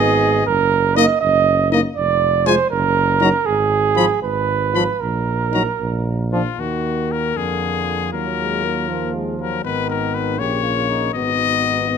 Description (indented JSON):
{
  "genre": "classical, brass quintet",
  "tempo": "80 BPM (dotted quarters)",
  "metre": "6/8",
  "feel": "rubato",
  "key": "Eb minor",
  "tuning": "A4 = 442 Hz",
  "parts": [
    { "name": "brilliant trumpet", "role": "melody", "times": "0.0-12.0 s", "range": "F4 to Cb6", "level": "-21 LUFS", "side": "left 12 dB", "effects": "none" },
    { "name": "warm flugelhorn", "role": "second line", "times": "0.0-12.0 s", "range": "Eb4 to Eb5", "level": "-20 LUFS", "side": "right 7 dB", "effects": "none" },
    { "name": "clear euphonium", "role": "accompaniment", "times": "0.0-12.0 s", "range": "Cb3 to B3", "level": "-24 LUFS", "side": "right 2 dB", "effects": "none" },
    { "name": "mellow French horn", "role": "accompaniment", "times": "0.0-12.0 s", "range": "Gb3 to F4", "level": "-26 LUFS", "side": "left 6 dB", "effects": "none" },
    { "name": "mellow tuba", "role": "bass", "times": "0.0-12.0 s", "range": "F1 to F2", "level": "-23 LUFS", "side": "right 3 dB", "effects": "none" }
  ],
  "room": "light reverb",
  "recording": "close, detailed microphones",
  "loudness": "-16 LUFS",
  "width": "side -7 dB against mid",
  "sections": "0.0-6.6 A section; 6.6-12.0 B section",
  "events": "none",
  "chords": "0.5 Ebm/Gb; 2.0 Dm/F; 2.7 Ebm/Gb (rootless); 3.5 Fdim/Ab; 5.0 Eb5/Bb; 5.8 Bb; 6.6 Ebm; 7.4 Ddim/F; 8.1 Ebm; 9.6 Abm; 10.4 Gdim/Bb; 11.1 Abm"
}